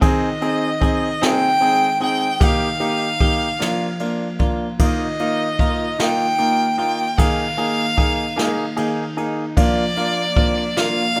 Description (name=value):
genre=six-eight pop ballad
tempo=50 BPM (dotted quarters)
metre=6/8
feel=straight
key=Eb major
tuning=A4 = 439 Hz
part: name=clear violin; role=melody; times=0.0-11.2 s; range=D5 to G5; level=-23 LUFS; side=equal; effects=none
part: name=warm concert grand piano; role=accompaniment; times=0.0-11.2 s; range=Bb3 to Ab4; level=-24 LUFS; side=equal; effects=none
part: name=twelve-string electric guitar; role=arpeggios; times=0.0-11.2 s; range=Eb3 to Ab4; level=-31 LUFS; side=equal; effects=none
part: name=jazz brush drum kit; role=drums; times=0.0-11.2 s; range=kick drum, ride cymbal, snare drum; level=-23 LUFS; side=equal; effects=none
room=light reverb, studio reverb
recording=rough home demo mix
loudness=-19 LUFS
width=mono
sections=0.0-11.2 A section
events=none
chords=0.0 Ab; 2.4 Eb; 3.6 Bb; 4.8 Ebsus2; 7.2 Absus2; 9.6 Bb